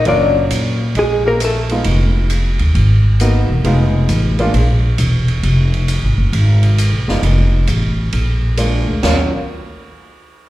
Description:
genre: jazz, small-group swing and bop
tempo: 134 BPM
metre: 4/4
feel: swing 66% on 8ths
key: Eb minor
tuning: A4 = 440 Hz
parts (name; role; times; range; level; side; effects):
- hollow-body jazz guitar; melody; 0.0-1.6 s; Ab4 to D5; -15 LUFS; left 4 dB; slapback echo
- warm tenor saxophone; second line; 0.0-1.7 s; Ab3 to D4; -22 LUFS; right 3 dB; slapback echo
- warm baby grand piano; accompaniment; 0.1-9.3 s; Gb3 to Gb4; -19 LUFS; right 1 dB; slapback echo
- upright bass; bass; 0.1-9.3 s; Fb1 to Bb2; -13 LUFS; equal; none
- open jazz drum kit; drums; 0.1-9.2 s; crash cymbal, hi-hat, ride cymbal, snare drum; -24 LUFS; right 2 dB; none
room: light reverb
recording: live gig heard through the venue's PA, recital hall reverb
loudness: -12 LUFS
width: side -16 dB against mid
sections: 0.0-1.9 A section; 1.9-9.0 B section; 9.0-10.5 C section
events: none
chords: 0.0 Ebm9 (rootless); 1.9 Fm7b5; 2.8 Abm7; 3.6 Fm7b5; 4.5 N.C.; 5.4 Fm; 6.3 Abm7; 7.2 Fm7b5; 8.1 Bb7; 9.0 Ebm9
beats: | 0.06 0.51 0.96 1.41 | 1.85 2.30 2.75 3.20 | 3.65 4.09 4.54 4.99 | 5.44 5.89 6.34 6.78 | 7.23 7.68 8.13 8.58 | 9.02

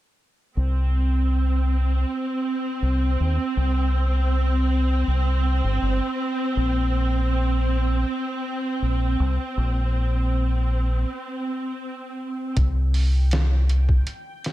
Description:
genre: trip hop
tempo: 80 BPM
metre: 4/4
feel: straight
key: unclear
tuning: A4 = 440 Hz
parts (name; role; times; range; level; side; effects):
- clear studio string section; sustained chords; 0.6-12.6 s; C4; -27 LUFS; right 2 dB; low-pass filter
- deep dub fingered electric bass; bass; 0.6-14.0 s; G1 to Eb2; -20 LUFS; equal; none
- bowed-like drone; texture; 1.6-14.5 s; C4 to G5; -35 LUFS; right 1 dB; built-in reverb, phaser
- trip hop sampler-style drum kit; drums; 12.6-14.5 s; hi-hat, kick drum, snare drum; -24 LUFS; equal; small room ambience
room: light reverb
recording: none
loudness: -20 LUFS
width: side -15 dB against mid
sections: 0.6-12.6 A section; 12.6-14.5 B section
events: break 11.1-12.6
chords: 0.6 N.C.; 6.6 Bbsus2; 12.6 C5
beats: | 0.56 1.31 2.06 2.81 | 3.56 4.32 5.07 5.82 | 6.57 7.32 8.06 8.81 | 9.56 10.31 11.06 11.81 | 12.56 13.31 14.06

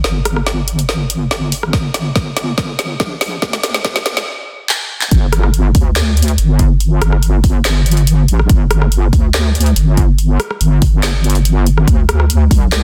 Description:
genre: deep dubstep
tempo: 142 BPM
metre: 4/4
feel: half-time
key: G minor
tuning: A4 = 440 Hz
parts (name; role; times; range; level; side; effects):
- wobble bass; bass; 0.0-12.8 s; G1 to D2; -15 LUFS; equal; chorus
- deep house drum kit; drums; 0.0-12.8 s; handclaps, hi-hat, rim click, snare drum; -20 LUFS; equal; small room reverb, soft clipping on snare
- electronic kick drum; drums; 1.7-12.6 s; none; -15 LUFS; equal; small room reverb
room: light reverb, digital ambience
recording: dense, heavily limited modern master, high-pass filter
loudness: -14 LUFS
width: mono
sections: 0.0-5.1 A section; 5.1-12.8 B section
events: build-up 0.0-5.1; drum fill 0.0-4.3, 4.7-5.1; filter sweep 0.0-5.1; stop 4.3-5.1; drop 5.1-12.8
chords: none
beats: | 0.04 0.47 0.89 1.31 | 1.74 2.16 2.58 3.00 | 3.42 3.85 4.27 4.69 | 5.12 5.54 5.96 6.38 | 6.81 7.23 7.65 8.07 | 8.50 8.92 9.34 9.76 | 10.19 10.61 11.03 11.45 | 11.88 12.30 12.72

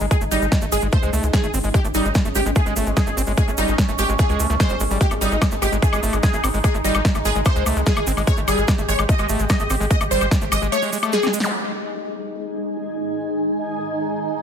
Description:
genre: psychedelic trance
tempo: 147 BPM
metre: 4/4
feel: straight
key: unclear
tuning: A4 = 440 Hz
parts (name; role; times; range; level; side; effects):
- bubbling stepped-filter texture; sustained chords; 0.0-14.4 s; Ab3 to G4; -27 LUFS; equal; chorus, built-in reverb, sidechain pumping
- screaming distorted acid line; riff; 0.0-11.5 s; G3 to C4; -27 LUFS; equal; distortion, chorus, auto-pan, vintage 12-bit sampler grit, sidechain pumping, digital delay
- tight sequencer bass; bass; 0.0-10.7 s; Ab1 to Db2; -23 LUFS; equal; none
- cabasa; percussion; 0.0-11.5 s; none; -32 LUFS; right 5 dB; none
- supersaw stab; melody; 0.1-11.3 s; Eb4 to Eb5; -24 LUFS; equal; phaser, sidechain pumping, digital delay
- big-room dance drum kit; drums; 0.1-11.5 s; hi-hat, snare drum, woodblock; -26 LUFS; left 2 dB; overdrive
- electronic kick drum; drums; 0.1-10.4 s; none; -20 LUFS; equal; overdrive
- zap; sound effects; 11.4-11.5 s; none; -28 LUFS; equal; none
- granular cloud pad; texture; 12.2-14.4 s; Ab3 to Ab5; -28 LUFS; right 4 dB; built-in reverb, sidechain pumping
room: light reverb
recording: none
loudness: -17 LUFS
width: side -8 dB against mid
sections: 0.0-11.5 A section; 11.5-14.4 B section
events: drum fill 11.1-11.5; band accent 11.4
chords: 0.0 Ab5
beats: | 0.11 0.52 0.93 1.33 | 1.74 2.15 2.56 2.97 | 3.38 3.78 4.19 4.60 | 5.01 5.42 5.82 6.23 | 6.64 7.05 7.46 7.87 | 8.27 8.68 9.09 9.50 | 9.91 10.31 10.72 11.13 | 11.54 11.95 12.36 12.76 | 13.17 13.58 13.99 14.40

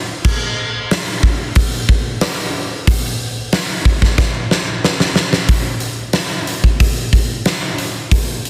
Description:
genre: rock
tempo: 92 BPM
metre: 4/4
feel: straight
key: none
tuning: none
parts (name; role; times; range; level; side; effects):
- big rock drum kit; drums; 0.2-8.5 s; crash cymbal, hi-hat, kick drum, snare drum; -17 LUFS; equal; none
room: little or no reverb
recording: dense, heavily limited modern master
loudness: -17 LUFS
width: mono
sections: 0.0-5.5 A section; 5.5-8.5 B section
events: drum fill 4.2-5.5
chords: none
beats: | 0.25 0.91 1.56 2.21 | 2.87 3.52 4.18 4.83 | 5.49 6.14 6.80 7.45 | 8.11

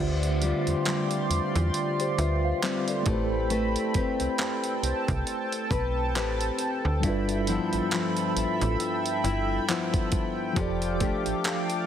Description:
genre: contemporary R&B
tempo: 68 BPM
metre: 4/4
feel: swing 58% on 16ths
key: A minor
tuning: A4 = 440 Hz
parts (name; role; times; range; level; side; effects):
- mellow tine electric piano; accompaniment; 0.0-11.9 s; D3 to F5; -31 LUFS; right 2 dB; medium stereo tremolo
- chorused pulse-width pad; sustained chords; 0.0-11.9 s; C4 to D6; -31 LUFS; right 1 dB; sidechain pumping
- nylon-string guitar; arpeggios; 0.0-11.9 s; G2 to B4; -31 LUFS; left 6 dB; ping-pong delay
- slap-like FM bass; bass; 0.0-11.3 s; F1 to E2; -28 LUFS; right 1 dB; none
- dusty soul sampler-style drum kit; drums; 0.2-11.9 s; handclaps, hi-hat, kick drum; -31 LUFS; right 1 dB; overdrive
room: light reverb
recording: heavily compressed radio sound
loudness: -24 LUFS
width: side -9 dB against mid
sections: 0.0-11.9 A section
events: none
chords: 0.0 Dm11; 3.1 Am9; 7.0 G13; 10.6 F69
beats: 0.86 1.74 2.62 | 3.50 4.39 5.27 6.15 | 7.03 7.92 8.80 9.68 | 10.56 11.45

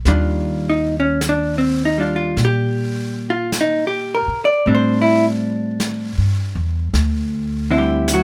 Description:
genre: jazz ballad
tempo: 52 BPM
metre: 4/4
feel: swing 66% on 8ths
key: Eb major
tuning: A4 = 440 Hz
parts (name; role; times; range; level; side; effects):
- vintage hollow-body jazz guitar; accompaniment; 0.0-8.2 s; D3 to D5; -20 LUFS; equal; none
- upright bass; bass; 0.1-8.2 s; D2 to Bb2; -22 LUFS; equal; none
- jazz brush drum kit; drums; 0.1-8.2 s; brushed snare drum, hi-hat, snare drum; -31 LUFS; equal; none
room: light reverb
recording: none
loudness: -19 LUFS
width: mono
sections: 0.1-8.2 A section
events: none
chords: 0.1 Ebmaj9; 4.7 Am7; 6.9 D9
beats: | 0.06 1.21 2.37 3.52 | 4.67 5.80 6.94 8.08

